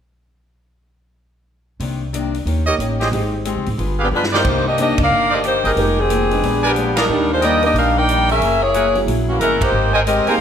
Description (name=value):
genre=jazz, big band swing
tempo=182 BPM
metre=4/4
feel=swing 62% on 8ths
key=C minor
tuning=A4 = 440 Hz
part: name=picked old ladder-braced acoustic guitar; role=accompaniment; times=1.8-10.3 s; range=Bb2 to Bb4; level=-25 LUFS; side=left 6 dB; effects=none
part: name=upright bass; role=bass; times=1.8-10.4 s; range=F1 to G2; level=-22 LUFS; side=equal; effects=none
part: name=swinging big-band drum kit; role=drums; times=1.8-10.3 s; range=crash cymbal, hi-hat, kick drum, ride cymbal, snare drum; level=-27 LUFS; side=right 1 dB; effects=none
part: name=warm baby grand piano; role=accompaniment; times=2.7-10.4 s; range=Eb3 to Db5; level=-24 LUFS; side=right 2 dB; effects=none
part: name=bright trumpet section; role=stabs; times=2.7-10.4 s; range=Eb4 to A#5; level=-22 LUFS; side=right 2 dB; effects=none
part: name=clear saxophone section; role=melody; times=4.0-10.4 s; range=Eb3 to G5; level=-16 LUFS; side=left 1 dB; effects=none
room=moderate recital hall reverb, RT60 1.4 s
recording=faint mains hum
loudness=-15 LUFS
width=side -8 dB against mid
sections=1.8-4.4 A section; 4.4-10.4 B section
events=drum fill 4.1-4.4; band accent 4.9, 6.9, 9.6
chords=1.8 Cm9; 2.5 Eb7; 3.1 Abmaj7; 3.8 G7b9; 4.4 Cm9; 5.8 Fm11; 6.4 Bb7b9; 7.1 Ebmaj7; 8.4 F#9; 9.7 Abmaj9